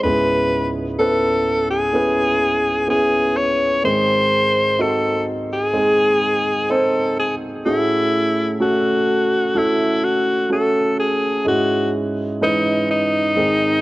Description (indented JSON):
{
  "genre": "pop ballad",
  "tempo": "63 BPM",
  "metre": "4/4",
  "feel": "straight",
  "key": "C# minor",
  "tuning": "A4 = 441 Hz",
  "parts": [
    { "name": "edgy alto saxophone", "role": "melody", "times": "0.0-13.8 s", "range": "D#4 to C#5", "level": "-18 LUFS", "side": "left 1 dB", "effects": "cassette tape" },
    { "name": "dark concert grand piano", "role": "accompaniment", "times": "0.0-13.8 s", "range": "C#2 to B#4", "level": "-20 LUFS", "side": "right 1 dB", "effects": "cassette tape" }
  ],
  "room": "light reverb",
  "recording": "home recording on cassette",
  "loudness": "-16 LUFS",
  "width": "side -18 dB against mid",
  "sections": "0.0-13.8 A section",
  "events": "none",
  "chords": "0.0 C#m7; 3.8 G#; 7.7 F#madd9/A; 11.5 C#m/G#"
}